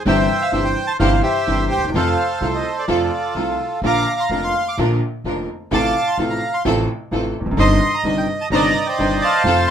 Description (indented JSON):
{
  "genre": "tango",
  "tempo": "128 BPM",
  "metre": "4/4",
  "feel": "rubato",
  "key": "unclear",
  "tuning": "A4 = 440 Hz",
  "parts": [
    { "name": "bandoneon", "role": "melody", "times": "0.0-9.7 s", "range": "F4 to D6", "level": "-18 LUFS", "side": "right 1 dB", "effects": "none" },
    { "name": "clear upright piano", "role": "accompaniment", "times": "0.1-9.7 s", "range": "F1 to F4", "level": "-21 LUFS", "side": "left 1 dB", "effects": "none" },
    { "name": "clear symphonic string section", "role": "stabs", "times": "0.1-9.7 s", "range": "C4 to C5", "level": "-26 LUFS", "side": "right 1 dB", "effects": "none" },
    { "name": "upright bass", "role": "bass", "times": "0.1-9.6 s", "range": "E1 to F2", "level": "-23 LUFS", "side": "right 1 dB", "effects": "none" }
  ],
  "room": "moderate small room reverb, RT60 0.6 s",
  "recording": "minimal, uncompressed stereo recording",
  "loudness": "-16 LUFS",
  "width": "side -8 dB against mid",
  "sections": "0.0-9.7 A section",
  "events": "none",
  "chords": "0.1 C/G; 1.9 F; 3.8 Bb; 5.7 F/A; 7.6 Cmadd9/G"
}